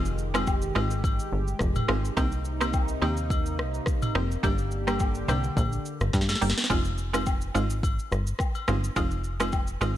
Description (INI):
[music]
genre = afrobeats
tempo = 106 BPM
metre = 4/4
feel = swing 55% on 16ths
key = unclear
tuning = A4 = 440 Hz
[part]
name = mallet-like synth pluck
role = accompaniment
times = 0.0-10.0 s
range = G3 to G4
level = -30 LUFS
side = right 2 dB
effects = chorus
[part]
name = warm analog pad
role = sustained chords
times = 0.0-6.7 s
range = C3 to G4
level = -34 LUFS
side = equal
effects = chorus
[part]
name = plucky analog bass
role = bass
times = 0.0-10.0 s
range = F1 to G2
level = -28 LUFS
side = equal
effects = none
[part]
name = afro-pop drum kit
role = drums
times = 0.1-10.0 s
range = hi-hat, kick drum, rim click, shaker, snare drum, toms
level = -28 LUFS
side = equal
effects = vintage 12-bit sampler grit
[part]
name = agogo bells and woodblock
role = percussion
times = 0.4-10.0 s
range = none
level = -36 LUFS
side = left 6 dB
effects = none
[sound]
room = digital ambience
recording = none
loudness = -24 LUFS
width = side -12 dB against mid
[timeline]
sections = 0.0-6.7 A section; 6.7-10.0 B section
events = drum fill 6.1-6.7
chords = 0.0 Fm7; 2.2 Cm7; 4.4 Gm; 6.7 Fm7